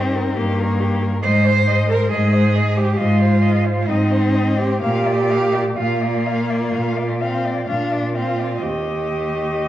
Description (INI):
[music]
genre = classical, lyrical piece for cello ensemble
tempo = 62-70 BPM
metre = 4/4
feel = rubato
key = Eb major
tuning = A4 = 441 Hz
[part]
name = rich cello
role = melody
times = 0.0-9.7 s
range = G4 to F5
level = -26 LUFS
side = left 4 dB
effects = none
[part]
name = clear cello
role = second line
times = 0.0-9.7 s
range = Eb4 to C5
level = -22 LUFS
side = right 3 dB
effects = none
[part]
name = rich cello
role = accompaniment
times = 0.0-8.6 s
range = Ab3 to D4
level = -23 LUFS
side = left 2 dB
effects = none
[part]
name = rich cello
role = bass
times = 0.0-9.7 s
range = Eb2 to Bb2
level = -20 LUFS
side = right 1 dB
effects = none
[sound]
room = wet recital hall reverb, RT60 1.4 s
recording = worn, warbling old tape, cassette tape, warbly pitch drift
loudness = -16 LUFS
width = side -13 dB against mid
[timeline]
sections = 0.0-9.7 A section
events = none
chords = 0.0 Eb/G; 1.2 Ab; 4.8 Bb; 8.6 Eb